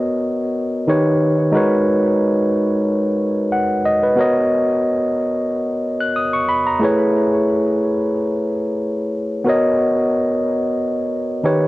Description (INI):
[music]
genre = soul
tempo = 91 BPM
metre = 4/4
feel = swing 54% on 16ths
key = B major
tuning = A4 = 440 Hz
[part]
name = overdriven tine electric piano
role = solo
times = 0.0-11.7 s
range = D#3 to F#6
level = -16 LUFS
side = equal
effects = tape echo
[sound]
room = moderate booth ambience, RT60 0.3 s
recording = home recording on cassette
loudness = -16 LUFS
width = side -18 dB against mid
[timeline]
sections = 0.0-11.7 A section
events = none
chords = 0.0 Bmaj7; 0.9 D#7b13; 1.5 G#m11; 4.2 Bmaj7; 6.8 Amaj9; 9.5 Bmaj7